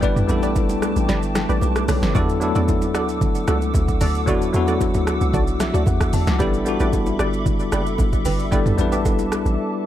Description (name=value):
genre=amapiano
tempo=113 BPM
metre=4/4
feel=straight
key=unclear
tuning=A4 = 440 Hz
part: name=bell-like tine electric piano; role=accompaniment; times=0.0-9.9 s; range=F#3 to A5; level=-23 LUFS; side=left 3 dB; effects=fast stereo tremolo
part: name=hollow soft pad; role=sustained chords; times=0.0-9.9 s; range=A3 to E6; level=-29 LUFS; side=equal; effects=ensemble chorus, sidechain pumping
part: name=punchy chord stab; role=stabs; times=0.0-9.0 s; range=F#4 to D5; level=-28 LUFS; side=right 1 dB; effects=chorus, digital delay
part: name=hollow log drum bass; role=bass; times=0.0-9.6 s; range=F#1 to E2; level=-22 LUFS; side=equal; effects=none
part: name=deep house drum kit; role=drums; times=0.0-9.6 s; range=hi-hat, kick drum, rim click, shaker, snare drum, toms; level=-22 LUFS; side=equal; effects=overdrive
part: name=congas and bongos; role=percussion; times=0.0-9.3 s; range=none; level=-32 LUFS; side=right 6 dB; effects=none
room=digital ambience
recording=none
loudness=-17 LUFS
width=side -12 dB against mid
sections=0.0-9.9 A section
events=kick muted 1.1-2.2; tine electric piano fill 5.3-6.4; break 9.6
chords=0.0 A9sus4; 2.2 E9sus4; 6.4 A9sus4